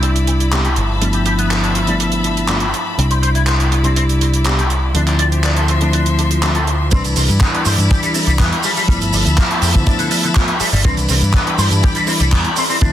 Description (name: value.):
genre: nu-disco, nu disco.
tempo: 122 BPM.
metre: 4/4.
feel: straight.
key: C major.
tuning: A4 = 441 Hz.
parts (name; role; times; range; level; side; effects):
mellow tine electric piano; accompaniment; 0.0-12.9 s; D2 to B4; -20 LUFS; equal; sidechain pumping.
bright studio string section; sustained chords; 0.0-12.9 s; F3 to C6; -23 LUFS; left 3 dB; sidechain pumping.
electric guitar with an envelope filter; riff; 0.0-12.9 s; D3 to D5; -23 LUFS; left 2 dB; ensemble chorus, low-pass filter, dub echo.
deep dub picked electric bass; bass; 0.0-12.9 s; G1 to G2; -17 LUFS; equal; none.
damped 70s drum kit; drums; 0.0-12.9 s; handclaps, hi-hat, shaker; -19 LUFS; right 2 dB; soft clipping on snare.
kick drum; drums; 6.9-12.9 s; none; -15 LUFS; equal; none.
room: light reverb, studio ambience.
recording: dense, heavily limited modern master.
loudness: -13 LUFS.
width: side -11 dB against mid.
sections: 0.0-6.9 A section; 6.9-12.9 B section.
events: filter sweep on tine electric piano 0.0-6.9; drop 6.9-12.9.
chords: 0.0 Cmaj9; 0.8 G13; 3.0 Cmaj9; 5.0 Dm9; 6.9 Cmaj9; 8.6 G13; 10.9 Cmaj9.